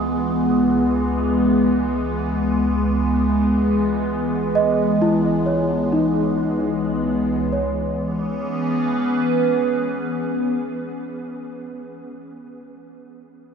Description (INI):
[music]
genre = ambient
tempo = free time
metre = none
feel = none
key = C# minor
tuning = A4 = 442 Hz
[part]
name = evolving wavetable pad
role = sustained chords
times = 0.0-11.0 s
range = C#2 to B4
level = -19 LUFS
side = equal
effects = phaser, built-in reverb
[part]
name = worn celesta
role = arpeggios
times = 0.0-13.5 s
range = D#4 to D#6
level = -23 LUFS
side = right 1 dB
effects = diffuse ambient delay
[sound]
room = wet huge ambient reverb, RT60 7.4 s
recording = in a vast, echoing space, cassette tape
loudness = -18 LUFS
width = side -6 dB against mid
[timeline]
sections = 0.0-7.5 A section; 7.5-11.1 B section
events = none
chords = 0.0 E/C#; 7.5 C#m7